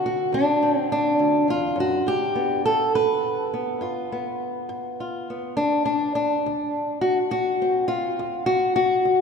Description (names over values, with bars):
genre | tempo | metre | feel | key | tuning
acoustic country blues, solo or duo | 69 BPM (dotted quarters) | 12/8 | straight | unclear | A4 = 440 Hz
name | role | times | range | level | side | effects
fingerpicked old ladder-braced acoustic guitar | solo | 0.0-9.2 s | D2 to B4 | -20 LUFS | left 1 dB | none
room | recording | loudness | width
wet church reverb, RT60 3.6 s | recorded in a church or concert hall | -21 LUFS | side -6 dB against mid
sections
0.0-9.2 A section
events
none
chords
0.0 D7; 2.1 G7; 5.6 D7